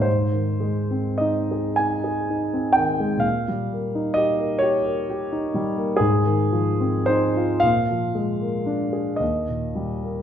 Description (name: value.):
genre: classical, romantic nocturne for solo piano.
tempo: 33-45 BPM (dotted quarters).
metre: 6/8.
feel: rubato.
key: Eb major from 6.0 s.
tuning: A4 = 440 Hz.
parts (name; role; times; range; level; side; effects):
warm grand piano; solo; 0.0-10.2 s; Eb2 to Ab5; -20 LUFS; equal; none.
room: wet recital hall reverb, RT60 1.3 s.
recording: minimal, uncompressed stereo recording.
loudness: -20 LUFS.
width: side -9 dB against mid.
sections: 0.0-10.2 A section.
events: none.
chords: 0.1 Ab; 3.2 Eb7/Bb; 6.0 Fm7/Ab; 7.6 Bb7; 9.2 Eb.